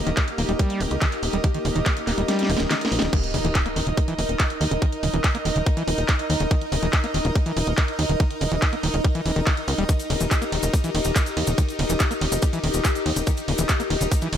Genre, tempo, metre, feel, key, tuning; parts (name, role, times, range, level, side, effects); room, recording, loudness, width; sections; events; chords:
psychedelic trance; 142 BPM; 4/4; straight; Eb major; A4 = 440 Hz
pulsing gated texture; sustained chords; 0.0-14.4 s; Bb3 to Eb5; -30 LUFS; left 2 dB; chorus, built-in reverb, sidechain pumping
tight sequencer bass; bass; 0.0-14.4 s; Eb1 to Eb2; -25 LUFS; equal
airy breathy pad; texture; 0.0-14.4 s; Eb4 to Eb5; -30 LUFS; right 1 dB; chorus, sidechain pumping
overdriven acid bass; riff; 0.1-14.4 s; Db3 to Bb3; -28 LUFS; moving between left 5 dB and right 4 dB; distortion, auto-pan, sidechain pumping, tape echo
techno drum kit; drums; 0.1-14.4 s; crash cymbal, handclaps, hi-hat, ride cymbal, snare drum; -28 LUFS; equal
electronic kick drum; drums; 0.2-14.2 s; -21 LUFS; equal; overdrive
impact; sound effects; 3.1-4.8 s; -34 LUFS; equal
cabasa; percussion; 9.9-14.3 s; -33 LUFS; left 3 dB
digital ambience; -20 LUFS; side -9 dB against mid
0.0-3.1 A section; 3.1-14.4 B section
kick drops out 2.3-3.1; drum fill 2.3-3.1; drop 3.1-14.4; impact 3.1-4.8
0.0 Eb5